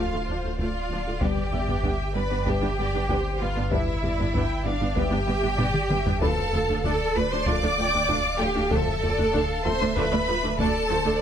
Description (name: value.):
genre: cinematic, hybrid orchestral and electronic film score.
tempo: 96 BPM.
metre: 4/4.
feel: straight.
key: D dorian.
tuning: A4 = 442 Hz.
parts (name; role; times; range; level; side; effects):
warm symphonic violin section; melody; 0.0-11.2 s; B4 to G5; -35 LUFS; left 2 dB; none.
warm symphonic violin section; second line; 0.0-11.2 s; D5 to D6; -30 LUFS; left 2 dB; none.
rich symphonic viola section; accompaniment; 0.0-11.1 s; F3 to F4; -30 LUFS; right 1 dB; none.
dark French horn section; sustained chords; 0.0-10.2 s; F3 to B4; -34 LUFS; left 6 dB; none.
clear symphonic cello section; bass; 0.0-11.2 s; D4 to D5; -28 LUFS; right 1 dB; none.
rich symphonic double bass section; bass; 0.0-11.1 s; D2 to G2; -32 LUFS; right 4 dB; none.
saturated sub bass; bass; 0.0-11.2 s; D1 to G1; -32 LUFS; equal; none.
felt-muted upright piano; texture; 0.0-11.2 s; G4 to B5; -37 LUFS; left 3 dB; ping-pong delay.
solo taiko drums; drums; 0.6-11.2 s; none; -30 LUFS; equal; none.
room: light reverb.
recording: close, detailed microphones.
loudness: -22 LUFS.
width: side -9 dB against mid.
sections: 0.0-11.2 A section.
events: drum fill 5.6-6.2.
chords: 0.0 Dm; 1.2 G; 6.2 Dm.